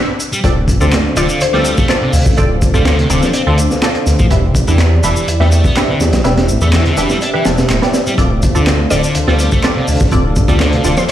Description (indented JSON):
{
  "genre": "breakbeat, breaks",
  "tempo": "124 BPM",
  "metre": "4/4",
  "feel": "straight",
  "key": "D dorian",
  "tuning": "A4 = 440 Hz",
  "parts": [
    { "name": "filtered dub chord stab", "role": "stabs", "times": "0.0-11.1 s", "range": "C4 to A5", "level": "-19 LUFS", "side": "right 1 dB", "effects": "phaser, analog chorus, dub echo" },
    { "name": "crunchy breakbeat drum kit", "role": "drums", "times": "0.2-11.1 s", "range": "hi-hat, kick drum, snare drum", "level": "-16 LUFS", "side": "equal", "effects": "none" },
    { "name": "electronic shaker and handclaps", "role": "drums", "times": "0.2-11.1 s", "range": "none", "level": "-23 LUFS", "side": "equal", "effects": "none" },
    { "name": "sludgy distorted guitar", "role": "riff", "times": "0.3-11.1 s", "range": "C3 to D4", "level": "-20 LUFS", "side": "equal", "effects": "overdrive, tube saturation, dub echo" },
    { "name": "dark analog pad", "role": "sustained chords", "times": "0.4-11.1 s", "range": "D4 to F5", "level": "-22 LUFS", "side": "equal", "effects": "chorus, sidechain pumping" },
    { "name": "dark detuned saw bass", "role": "bass", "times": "0.4-10.9 s", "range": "D1 to E2", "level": "-14 LUFS", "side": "equal", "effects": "none" },
    { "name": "mallet-like synth pluck", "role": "melody", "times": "1.2-1.9, 8.9-11.1 s", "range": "C5 to D5", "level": "-22 LUFS", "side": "left 2 dB", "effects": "chorus, small speaker sound, dub echo" }
  ],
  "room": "light reverb, studio ambience",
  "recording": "played on a big sound system in a bare room, large studio reverb",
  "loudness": "-10 LUFS",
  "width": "side -12 dB against mid",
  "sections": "0.0-11.1 A section",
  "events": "none",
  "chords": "0.4 Dm7; 4.3 Em7; 8.2 Dm7",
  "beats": "| 0.44 0.93 1.41 1.89 | 2.38 2.86 3.35 3.83 | 4.31 4.80 5.28 5.76 | 6.25 6.73 7.22 7.70 | 8.19 8.67 9.15 9.64 | 10.12 10.60 11.09"
}